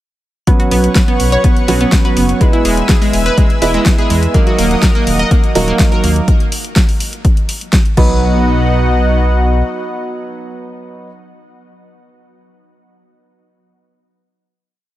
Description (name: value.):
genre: progressive house.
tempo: 124 BPM.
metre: 4/4.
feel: straight.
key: B major.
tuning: A4 = 438 Hz.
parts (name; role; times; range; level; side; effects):
lush unison pad; sustained chords; 0.5-11.1 s; B3 to E6; -21 LUFS; left 2 dB; chorus, sidechain pumping.
analog pluck; arpeggios; 0.5-8.4 s; G#3 to D#6; -19 LUFS; equal; chorus, cassette tape, sidechain pumping, digital delay.
dark grand piano; stabs; 0.5-11.1 s; F#3 to B4; -18 LUFS; right 3 dB; sidechain pumping, digital delay.
deep house drum kit; drums; 0.5-8.1 s; crash cymbal, hi-hat, snare drum; -20 LUFS; equal; none.
electronic kick drum; drums; 0.5-8.1 s; none; -12 LUFS; equal; none.
dark detuned saw bass; bass; 0.7-9.6 s; D#1 to E2; -14 LUFS; equal; sidechain pumping.
room: little or no reverb.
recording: none.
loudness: -10 LUFS.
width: side -14 dB against mid.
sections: 0.5-8.2 drop; 8.2-12.1 final hit.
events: drop 0.5-8.2.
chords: 0.5 Bsus2; 2.4 E; 4.3 D#m; 6.3 N.C.; 8.0 B.